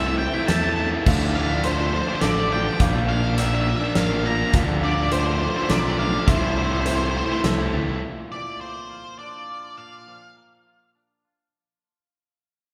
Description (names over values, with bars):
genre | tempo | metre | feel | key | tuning
post-rock | 104 BPM | 3/4 | straight | unclear | A4 = 440 Hz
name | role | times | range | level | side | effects
octave-fuzz lead guitar | melody | 0.0-10.9 s | C5 to Bb5 | -30 LUFS | equal | distortion
felt-muted upright piano | arpeggios | 0.0-8.0 s | A4 to F5 | -34 LUFS | equal | none
overdriven electric guitar | riff | 0.0-8.0 s | Bb2 to E4 | -31 LUFS | equal | none
raw garage guitar | riff | 0.0-8.0 s | Bb2 to E4 | -29 LUFS | equal | overdrive
growling fingered electric bass | bass | 0.0-8.0 s | A1 to E2 | -28 LUFS | equal | overdrive
big rock drum kit | drums | 0.5-7.6 s | crash cymbal, hi-hat, kick drum, snare drum | -27 LUFS | equal | none
twangy electric guitar | arpeggios | 8.0-11.5 s | Bb2 to F4 | -46 LUFS | equal | spring reverb
room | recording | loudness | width
wet church reverb, RT60 3.1 s | recorded in a church or concert hall | -22 LUFS | mono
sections
0.0-8.0 A section; 8.0-11.5 B section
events
fade-out 8.0-11.5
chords
0.0 Am/C; 1.1 Dm7; 2.8 Bb; 4.5 Dm7; 6.3 Am/C; 8.0 Bb